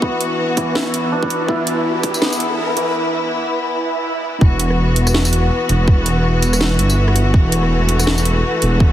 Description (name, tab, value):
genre	half-time drum and bass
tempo	164 BPM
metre	4/4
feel	swing 58% on 16ths, half-time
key	unclear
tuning	A4 = 439 Hz
part	rich symphonic string section	sustained chords	0.0-8.9 s	E3 to F#4	-20 LUFS	left 1 dB	sidechain pumping
part	santur	arpeggios	0.0-6.4 s	E3 to E4	-22 LUFS	equal	low-pass filter, dub echo
part	electronic kick drum	drums	0.0-2.1, 4.4-8.9 s	none	-13 LUFS	equal	high-pass filter on kick
part	riser and swell	sound effects	0.2-4.4 s	none	-26 LUFS	right 2 dB	none
part	drum and bass drum kit	drums	0.2-8.7 s	hi-hat, rim click, snare drum, tambourine	-20 LUFS	right 1 dB	overdrive
part	dark detuned saw bass	bass	4.4-8.9 s	E1 to G1	-16 LUFS	equal	none
room	light reverb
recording	heavily compressed radio sound, multiband compression, high-pass filter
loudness	-14 LUFS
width	side -12 dB against mid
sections	0.0-4.4 A section; 4.4-8.9 B section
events	build-up 0.0-4.4; riser 0.2-3.0; break 3.0-4.4; swell 3.8-4.4; drop 4.4-8.9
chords	0.0 E5; 4.4 Em